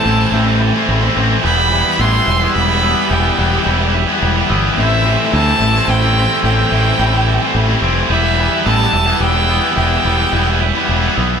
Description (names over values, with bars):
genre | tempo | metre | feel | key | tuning
post-rock | 108 BPM | 3/4 | straight | A minor | A4 = 440 Hz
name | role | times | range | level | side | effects
rich violin | melody | 0.0-10.9 s | E5 to C6 | -19 LUFS | right 2 dB | none
bright studio string section | sustained chords | 0.0-11.4 s | E3 to G4 | -25 LUFS | left 1 dB | none
glockenspiel with rubber mallets | arpeggios | 0.0-11.4 s | D6 to B6 | -25 LUFS | right 5 dB | none
twangy electric guitar | arpeggios | 0.0-11.4 s | A2 to C4 | -23 LUFS | left 1 dB | none
distorted electric guitar | riff | 0.0-11.4 s | A2 to E4 | -19 LUFS | right 8 dB | overdrive
tight distorted guitar | riff | 0.0-11.4 s | A2 to E4 | -19 LUFS | left 6 dB | distortion
growling fingered electric bass | bass | 0.1-11.4 s | E1 to D2 | -16 LUFS | equal | overdrive
room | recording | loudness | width
moderate large studio reverb, RT60 1.1 s | band playing live in one room | -12 LUFS | side -7 dB against mid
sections
0.0-11.4 A section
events
none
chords
0.0 Am7; 1.4 Em; 4.8 Am7; 8.1 Em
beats
0.33 0.88 | 1.44 1.99 2.55 | 3.10 3.66 4.21 | 4.77 5.33 5.88 | 6.44 6.99 7.55 | 8.10 8.66 9.22 | 9.77 10.33 10.89